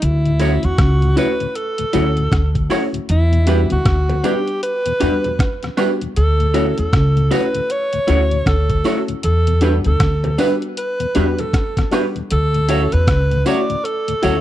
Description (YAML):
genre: lovers rock reggae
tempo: 78 BPM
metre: 4/4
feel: swing 61% on 16ths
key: D major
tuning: A4 = 441 Hz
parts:
  - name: breathy alto saxophone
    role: melody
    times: 0.0-14.4 s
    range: E4 to D5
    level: -21 LUFS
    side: right 1 dB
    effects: tape echo
  - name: upright bass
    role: bass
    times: 0.0-14.4 s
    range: C#2 to E2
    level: -16 LUFS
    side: equal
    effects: none
  - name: detuned 8-bit digital drum machine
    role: drums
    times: 0.0-14.4 s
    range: hi-hat, kick drum, rim click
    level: -19 LUFS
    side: equal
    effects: none
  - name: mellow tonewheel organ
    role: accompaniment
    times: 0.3-14.3 s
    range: D2 to E4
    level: -27 LUFS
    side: left 6 dB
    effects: overdrive, chorus vibrato, slow rotary speaker
  - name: FM electric piano with soft pad layer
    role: accompaniment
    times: 0.4-14.4 s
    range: G3 to F#4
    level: -24 LUFS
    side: left 3 dB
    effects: chorus
  - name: electric guitar through a small old amp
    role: stabs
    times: 0.4-14.4 s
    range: D4 to C#5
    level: -21 LUFS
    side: right 4 dB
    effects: none
  - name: tambourine and woodblock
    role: percussion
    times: 0.4-14.4 s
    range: none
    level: -33 LUFS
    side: right 6 dB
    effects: none
room: small room ambience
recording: dry, close 1970s-style studio recording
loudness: -14 LUFS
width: side -12 dB against mid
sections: 0.0-14.4 A section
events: none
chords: 0.0 Dmaj9; 3.1 Em7; 6.2 Dmaj9; 9.2 Em7; 12.3 Dmaj9